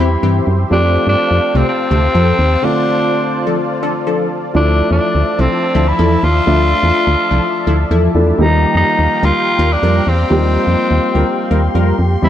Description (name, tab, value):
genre	pop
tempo	125 BPM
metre	4/4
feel	straight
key	D minor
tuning	A4 = 440 Hz
part	raspy tenor saxophone	melody	0.0-12.3 s	C4 to F4	-16 LUFS	left 1 dB	none
part	warm grand piano	accompaniment	0.0-12.3 s	D3 to E5	-19 LUFS	equal	none
part	sweeping resonant pad	sustained chords	0.0-12.3 s	F3 to C6	-23 LUFS	left 2 dB	chorus
part	funky polysynth comp	stabs	0.0-12.0 s	C3 to Bb4	-20 LUFS	left 1 dB	chorus
part	solid FM bass	bass	0.0-12.3 s	C2 to G2	-14 LUFS	equal	none
room	moderate concert hall reverb, RT60 2.4 s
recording	dark, warm production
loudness	-11 LUFS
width	side -11 dB against mid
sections	0.0-4.5 A section; 4.5-12.3 A section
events	break 2.6-4.5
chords	0.0 C; 0.7 Fadd9; 2.6 Dm7; 4.5 Dmadd9; 8.4 Ebadd9